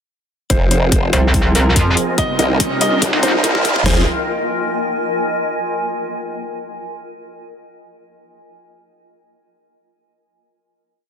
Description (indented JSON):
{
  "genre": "heavy wobble dubstep",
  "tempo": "143 BPM",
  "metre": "4/4",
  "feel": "half-time",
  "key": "F minor",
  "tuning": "A4 = 440 Hz",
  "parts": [
    { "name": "felt-muted upright piano", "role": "melody", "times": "0.5-4.0 s", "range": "Bb4 to Eb5", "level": "-23 LUFS", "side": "equal", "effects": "low-pass filter, digital delay" },
    { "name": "supersaw chords", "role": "sustained chords", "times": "0.5-4.1 s", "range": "C3 to Ab4", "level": "-23 LUFS", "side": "right 2 dB", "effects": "sidechain pumping, low-pass filter" },
    { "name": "formant-sweep wobble bass", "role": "bass", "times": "0.5-4.1 s", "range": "F1 to C2", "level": "-17 LUFS", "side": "equal", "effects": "chorus, overdrive" },
    { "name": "dubstep drum kit", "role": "drums", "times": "0.5-4.0 s", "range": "hi-hat, kick drum, snare drum, toms", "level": "-19 LUFS", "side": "equal", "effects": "overdrive" },
    { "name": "electronic hi-hat", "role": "drums", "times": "0.5-3.7 s", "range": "none", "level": "-20 LUFS", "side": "left 4 dB", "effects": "overdrive" },
    { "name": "riser", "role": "sound effects", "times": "1.3-3.9 s", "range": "none", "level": "-24 LUFS", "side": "right 1 dB", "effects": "none" },
    { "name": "granular cloud pad", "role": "texture", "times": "1.6-5.5 s", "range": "F4 to Ab5", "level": "-22 LUFS", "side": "left 1 dB", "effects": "built-in reverb, sidechain pumping" },
    { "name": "metallic wobble bass", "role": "bass", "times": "1.1-3.3 s", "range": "C2 to F2", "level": "-14 LUFS", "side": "equal", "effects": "chorus, overdrive" }
  ],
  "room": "light reverb",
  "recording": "dense, heavily limited modern master, high-pass filter",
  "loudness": "-14 LUFS",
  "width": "side -8 dB against mid",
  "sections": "0.5-3.9 build; 3.9-5.5 final chord",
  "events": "build-up 0.5-3.9; filter sweep on supersaw synth 0.5-3.9; filter sweep 0.5-3.9; riser 1.3-3.9; drum fill 2.2-3.9",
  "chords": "0.5 Fm; 2.2 Cm; 3.9 Fm",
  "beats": "| 0.50 0.92 1.34 1.76 | 2.18 2.60 3.02 3.44 | 3.86 4.28 4.70 5.12"
}